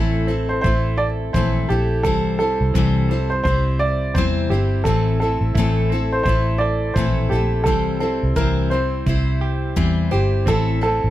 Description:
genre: acoustic pop.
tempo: 85 BPM.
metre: 4/4.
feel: swing 60% on 16ths.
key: unclear.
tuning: A4 = 440 Hz.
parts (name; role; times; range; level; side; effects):
dark upright piano; melody; 0.0-11.1 s; G4 to D5; -23 LUFS; right 1 dB; none.
picked steel-string acoustic guitar; accompaniment; 0.0-11.1 s; A2 to C5; -24 LUFS; left 5 dB; none.
direct-recorded clean electric guitar; arpeggios; 0.0-11.1 s; G3 to A4; -29 LUFS; right 6 dB; none.
vintage muted fingered electric bass; bass; 0.0-11.1 s; G1 to E2; -20 LUFS; equal; none.
electronic kick drum; drums; 0.6-10.7 s; none; -24 LUFS; equal; none.
room: little or no reverb.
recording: close, detailed microphones.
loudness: -17 LUFS.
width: side -14 dB against mid.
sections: 0.0-11.1 A section.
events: none.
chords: 0.0 Am; 2.0 C; 4.9 Am; 7.7 C; 10.5 Am.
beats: 0.64 1.34 | 2.04 2.75 3.45 4.15 | 4.85 5.55 6.26 6.96 | 7.66 8.37 9.07 9.77 | 10.47.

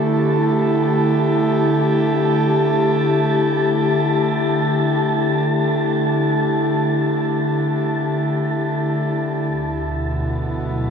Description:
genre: ambient.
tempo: free time.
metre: none.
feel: none.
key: unclear.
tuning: A4 = 440 Hz.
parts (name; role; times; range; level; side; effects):
airy breathy pad; sustained chords; 0.0-10.9 s; D2 to G4; -17 LUFS; left 1 dB; chorus, shimmer reverb.
wind-like tuned noise texture; texture; 0.0-10.9 s; A5; -25 LUFS; right 2 dB; built-in reverb, shimmer reverb.
room: wet lush hall reverb, RT60 2.6 s.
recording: worn, warbling old tape, cassette tape, warbly pitch drift.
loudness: -16 LUFS.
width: side -6 dB against mid.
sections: 0.0-10.9 A section.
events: none.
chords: 0.0 Dsus4; 9.5 Bm7/D.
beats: free time.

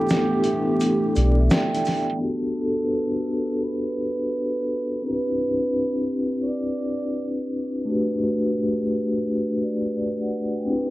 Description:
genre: lo-fi hip hop.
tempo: 85 BPM.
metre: 4/4.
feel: swing 66% on 16ths.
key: G major.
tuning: A4 = 441 Hz.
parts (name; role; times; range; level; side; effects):
trumpet with bucket mute; melody; 0.0-7.5 s; G4 to D5; -30 LUFS; right 3 dB; low-pass filter.
vibraphone with soft mallets; accompaniment; 0.0-10.9 s; A3 to G5; -23 LUFS; left 1 dB; cassette tape, low-pass filter.
dark analog pad; sustained chords; 0.0-2.2 s; E3 to G4; -26 LUFS; right 1 dB; chorus, low-pass filter.
dusty soul sampler-style drum kit; drums; 0.1-2.2 s; hi-hat, snare drum; -24 LUFS; equal; none.
maracas; percussion; 0.1-2.1 s; none; -47 LUFS; right 5 dB; none.
round analog bass; bass; 1.2-1.5 s; B1; -17 LUFS; equal; none.
room: moderate plate reverb, RT60 2.7 s.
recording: dark, warm production, vinyl crackle, low-pass filter.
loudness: -21 LUFS.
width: side -17 dB against mid.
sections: 0.0-2.2 A section; 2.2-10.9 B section.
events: break 0.0-2.2; vibraphone fill 0.8-2.2.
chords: 0.0 G69; 2.2 Gmaj7; 5.0 Cmaj9; 7.9 Gmaj7.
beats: 0.10 0.81 1.51 | 2.22 2.92 3.63 4.33 | 5.04 5.75 6.45 7.16 | 7.86 8.57 9.28 9.98 | 10.69.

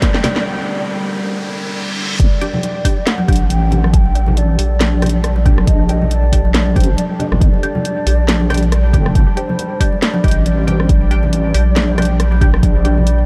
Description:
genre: deep dubstep.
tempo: 138 BPM.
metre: 4/4.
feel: swing 56% on 16ths, half-time.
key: G minor.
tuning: A4 = 438 Hz.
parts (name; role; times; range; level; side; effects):
breathy mellow ney; melody; 0.0-13.3 s; C5 to A5; -28 LUFS; equal; dub echo.
overtone-sweeping drone; sustained chords; 0.0-13.3 s; D3 to D5; -28 LUFS; equal; chorus, built-in reverb, phaser.
electronic kick drum; drums; 0.0-12.7 s; none; -16 LUFS; equal; none.
garage drum kit; drums; 0.0-13.2 s; hi-hat, rim click, snare drum; -24 LUFS; equal; none.
congas; percussion; 0.0-13.3 s; none; -25 LUFS; equal; dub echo.
riser and reverse cymbal; sound effects; 0.0-2.2 s; none; -29 LUFS; equal; none.
filtered dub chord stab; stabs; 0.2-13.0 s; D4 to G5; -29 LUFS; equal; phaser, lush chorus, dub echo.
deep soft wobble bass; bass; 2.2-13.3 s; G1 to Bb1; -17 LUFS; equal; chorus.
room: light reverb.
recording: none.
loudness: -15 LUFS.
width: mono.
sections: 0.0-2.2 A section; 2.2-13.3 B section.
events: build-up 0.0-2.2; drum fill 0.0-0.5; riser 0.0-2.2; break 0.5-2.2; reverse cymbal 1.3-2.2; drop 2.2-13.3.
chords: 0.0 G5.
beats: 0.02 | 0.46 0.89 1.33 1.76 | 2.20 2.63 3.07 3.50 | 3.94 4.37 4.80 5.24 | 5.67 6.11 6.54 6.98 | 7.41 7.85 8.28 8.72 | 9.15 9.59 10.02 10.46 | 10.89 11.33 11.76 12.20 | 12.63 13.07.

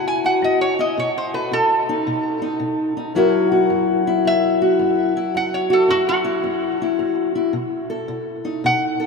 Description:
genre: acoustic country blues, solo or duo.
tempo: 109 BPM.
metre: 4/4.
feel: swing 66% on 8ths.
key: unclear.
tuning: A4 = 444 Hz.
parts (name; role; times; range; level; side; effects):
lap resonator guitar; melody; 0.0-9.1 s; F#4 to G#5; -22 LUFS; equal; none.
fingerpicked steel-string acoustic guitar; accompaniment; 0.0-9.1 s; F#2 to A#4; -18 LUFS; left 2 dB; none.
room: wet cathedral reverb, RT60 6.2 s.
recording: in a vast, echoing space.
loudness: -17 LUFS.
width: side -4 dB against mid.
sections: 0.0-9.1 A section.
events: resonator guitar played with a steel bar solo 0.0-9.1.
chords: 0.0 Emaj7sus2/F#; 1.0 B7; 3.2 F#7; 7.5 B7.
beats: 0.41 | 0.95 1.50 2.06 2.60 | 3.15 3.70 4.25 4.80 | 5.35 5.90 6.45 7.00 | 7.55 8.10 8.64.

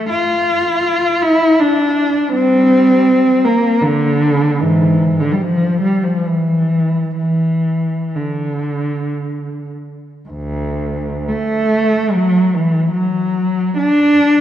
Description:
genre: classical, free, expressive piece for unaccompanied cello.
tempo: 45-84 BPM.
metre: 3/4.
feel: rubato.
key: D minor, D major from 10.3 s.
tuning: A4 = 437 Hz.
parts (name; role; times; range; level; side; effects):
warm cello; solo; 0.0-14.4 s; D2 to F4; -13 LUFS; equal; none.
room: wet concert hall reverb, RT60 2.5 s.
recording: dark, warm production.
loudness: -13 LUFS.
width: side -11 dB against mid.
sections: 0.0-10.3 A section; 10.3-14.4 B section.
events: none.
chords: none.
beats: | 0.11 0.86 1.59 | 2.31 3.06 3.81 | 4.58 5.40 6.24 | 7.16 8.17 9.14 | 10.30 11.32 12.15 | 12.92 13.77.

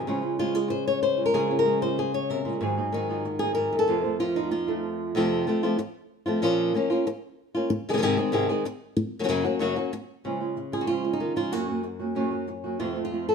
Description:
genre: flamenco.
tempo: 189 BPM.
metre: 4/4.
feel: straight.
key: unclear.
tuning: A4 = 436 Hz.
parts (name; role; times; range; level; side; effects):
flamenco guitar; melody; 0.0-13.3 s; F2 to Db5; -25 LUFS; left 1 dB; none.
flamenco guitar; stabs; 0.0-5.2, 10.2-13.3 s; F2 to Ab4; -30 LUFS; right 5 dB; none.
room: moderate stone room reverb, RT60 1.0 s.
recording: minimal, uncompressed stereo recording.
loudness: -24 LUFS.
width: side -6 dB against mid.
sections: 0.0-5.2 A section; 5.2-10.3 B section; 10.3-13.3 C section.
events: none.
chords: 0.1 Db; 2.6 Ab7; 3.9 F; 6.4 Bbm; 7.7 Ab; 9.0 Gb; 10.3 Db; 11.5 Gb; 12.8 F.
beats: | 0.07 0.39 0.70 1.02 | 1.34 1.66 1.98 2.30 | 2.61 2.93 3.25 3.57 | 3.89 4.21 4.52 4.84 | 5.16 5.48 5.80 6.11 | 6.43 6.75 7.07 7.39 | 7.70 8.02 8.34 8.66 | 8.98 9.29 9.61 9.93 | 10.25 10.57 10.89 11.21 | 11.53 11.85 12.17 12.49 | 12.81 13.12.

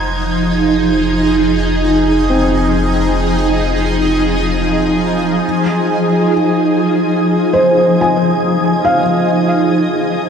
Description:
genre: ambient.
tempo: 71 BPM.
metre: 4/4.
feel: straight.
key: unclear.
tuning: A4 = 440 Hz.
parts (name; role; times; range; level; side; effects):
shimmering ambient pad; sustained chords; 0.0-10.3 s; F3 to Eb5; -13 LUFS; equal; chorus, built-in reverb, phaser.
felt-muted upright piano; arpeggios; 0.0-10.3 s; C4 to Ab5; -18 LUFS; equal; tape echo.
warm sub bass; bass; 0.0-5.4 s; F1; -20 LUFS; equal; none.
warm symphonic violin section; texture; 0.0-10.3 s; Ab6; -29 LUFS; equal; none.
room: wet huge ambient reverb, RT60 7.9 s.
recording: cassette tape.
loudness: -11 LUFS.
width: side -7 dB against mid.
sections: 0.0-5.4 A section; 5.4-10.3 B section.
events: fade-out on violin section 0.0-5.4.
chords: 0.0 Fm7.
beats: 0.34 1.19 | 2.03 2.87 3.72 4.58 | 5.44 6.29 7.14 7.97 | 8.81 9.64.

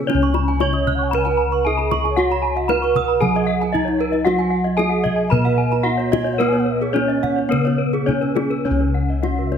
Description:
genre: Balinese gamelan.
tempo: 103-115 BPM.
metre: 4/4.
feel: straight.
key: Db slendro.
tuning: A4 = 440 Hz.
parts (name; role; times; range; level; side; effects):
gamelan-type bronze metallophone; melody; 0.0-9.6 s; Cb4-45c to Db5; -22 LUFS; right 2 dB; none.
gamelan-type bronze metallophone; accompaniment; 0.0-0.1, 4.3-9.6 s; Db3 to Cb4-45c; -26 LUFS; right 5 dB; none.
gamelan-type bronze metallophone; arpeggios; 0.0-9.6 s; Cb5-45c to Eb6+30c; -25 LUFS; left 8 dB; tape echo.
gamelan-type bossed gongs; bass; 0.0-9.6 s; Db2 to Cb5-45c; -22 LUFS; left 1 dB; none.
kendang; percussion; 0.1-9.6 s; none; -26 LUFS; left 6 dB; none.
gamelan-type bronze metallophone; arpeggios; 0.2-9.5 s; Ab4+25c to Gb6-35c; -26 LUFS; right 4 dB; none.
mellow xiao; second line; 0.7-9.6 s; Db5 to Ab5+25c; -30 LUFS; equal; none.
room: light reverb.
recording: close, detailed microphones.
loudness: -16 LUFS.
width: side -7 dB against mid.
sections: 0.1-8.7 A section.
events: none.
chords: none.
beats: | 0.10 0.62 1.14 1.66 | 2.18 2.70 3.22 3.74 | 4.26 4.78 5.31 5.85 | 6.39 6.95 7.51 8.08 | 8.66 9.24.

